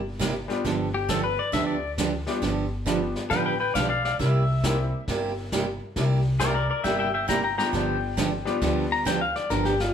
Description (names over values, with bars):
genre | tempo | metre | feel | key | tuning
country, western swing | 136 BPM | 4/4 | swing 66% on 8ths | G mixolydian | A4 = 441 Hz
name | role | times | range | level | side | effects
upright bass | bass | 0.0-9.9 s | G1 to D2 | -29 LUFS | equal | none
picked steel-string acoustic guitar | accompaniment | 0.2-9.7 s | C3 to G4 | -28 LUFS | right 4 dB | none
vintage brush drum kit | drums | 0.2-9.9 s | brushed snare drum, hi-hat, kick drum, snare drum | -32 LUFS | left 1 dB | none
bright upright piano | accompaniment | 0.5-4.9, 7.6-9.0 s | G3 to G4 | -30 LUFS | left 4 dB | none
pedal steel guitar | second line | 0.9-9.9 s | F4 to Bb5 | -26 LUFS | left 4 dB | none
room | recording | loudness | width
moderate large studio reverb, RT60 0.9 s | band playing live in one room | -23 LUFS | side -8 dB against mid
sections
0.0-9.9 A section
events
pedal steel guitar solo 0.0-9.9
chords
0.0 C7; 0.7 G7; 4.2 C7; 7.7 G7